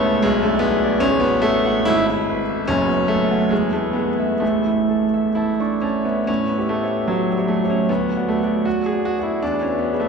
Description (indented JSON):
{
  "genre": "classical, romantic character piece for solo piano",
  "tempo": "62-81 BPM",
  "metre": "2/4",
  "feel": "rubato",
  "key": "A major",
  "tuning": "A4 = 435 Hz",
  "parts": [
    { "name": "clear grand piano", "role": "solo", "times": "0.0-10.1 s", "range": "F#1 to C#6", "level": "-17 LUFS", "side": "equal", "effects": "none" }
  ],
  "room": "wet cathedral reverb, RT60 6.2 s",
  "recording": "recorded in a church or concert hall",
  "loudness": "-17 LUFS",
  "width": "side -5 dB against mid",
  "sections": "0.0-6.3 A section; 6.3-10.1 A section",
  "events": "none",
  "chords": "0.3 G#dim/B; 1.0 F#m/A; 1.9 E/G#; 2.7 F#madd11; 3.5 E; 4.4 A; 6.3 A7; 7.9 D; 9.4 E"
}